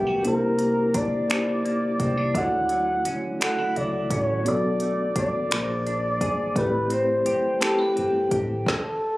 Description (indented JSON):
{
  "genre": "slow six-eight R&B",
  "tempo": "57 BPM (dotted quarters)",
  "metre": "6/8",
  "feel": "straight",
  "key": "unclear",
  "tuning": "A4 = 440 Hz",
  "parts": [
    { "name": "breathy flugelhorn", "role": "melody", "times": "0.0-9.2 s", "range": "G4 to F#5", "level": "-25 LUFS", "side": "equal", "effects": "slapback echo" },
    { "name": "semi-hollow electric guitar", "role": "second line", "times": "0.0-9.2 s", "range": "B2 to B4", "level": "-33 LUFS", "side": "right 1 dB", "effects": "wide subtle chorus" },
    { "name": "tine electric piano", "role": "accompaniment", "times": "0.0-8.7 s", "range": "D3 to F#5", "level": "-26 LUFS", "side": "equal", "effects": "overdrive, fast stereo tremolo" },
    { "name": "vintage muted fingered electric bass", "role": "bass", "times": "0.0-8.6 s", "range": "G1 to D2", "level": "-32 LUFS", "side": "equal", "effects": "none" },
    { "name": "smooth R&B drum kit", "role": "drums", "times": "0.2-8.8 s", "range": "finger snaps, hi-hat, kick drum, snare drum", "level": "-28 LUFS", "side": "equal", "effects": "none" }
  ],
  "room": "light reverb",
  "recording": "recorded on a phone in the room, club reverb, compression",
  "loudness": "-21 LUFS",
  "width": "side -18 dB against mid",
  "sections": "0.0-9.2 A section",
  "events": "none",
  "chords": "0.2 C9; 2.3 Dmaj9; 4.5 Bm7; 5.5 A#9; 6.6 Am9; 8.7 N.C."
}